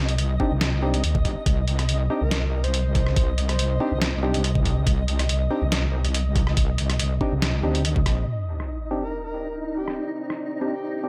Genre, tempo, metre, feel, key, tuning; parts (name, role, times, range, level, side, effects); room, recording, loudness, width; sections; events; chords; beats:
deep dubstep; 141 BPM; 4/4; swing 53% on 16ths, half-time; C minor; A4 = 440 Hz
wobble bass; bass; 0.0-8.3 s; G1 to D2; -25 LUFS; equal; chorus
flickering grainy texture; texture; 0.0-11.1 s; Eb4 to Eb5; -36 LUFS; equal; built-in reverb
trip hop sampler-style drum kit; drums; 0.1-10.4 s; hi-hat, rim click, snare drum; -30 LUFS; equal; low-pass filter on hats, low-pass filter on snare
percussive organ stab; stabs; 0.4-11.1 s; C4 to G4; -32 LUFS; equal; chorus, dub echo
electronic kick drum; drums; 0.4-8.2 s; -25 LUFS; equal
breathy flute-like synth lead; melody; 2.2-4.1, 9.0-11.1 s; G4 to C5; -36 LUFS; equal; subtle chorus, dub echo
deep dark ambient pad; sustained chords; 9.3-11.1 s; C4 to D5; -37 LUFS; equal; chorus, built-in reverb
sub drop; sound effects; 8.3-10.0 s; -34 LUFS; equal
light reverb; -24 LUFS; mono
0.0-8.3 A section; 8.3-11.1 B section
impact 8.3-10.0
0.0 Cmadd9
0.19 0.61 1.04 | 1.46 1.89 2.31 2.74 | 3.17 3.59 4.02 4.44 | 4.87 5.29 5.72 6.14 | 6.57 7.00 7.42 7.85 | 8.27 8.70 9.12 9.55 | 9.97 10.40 10.82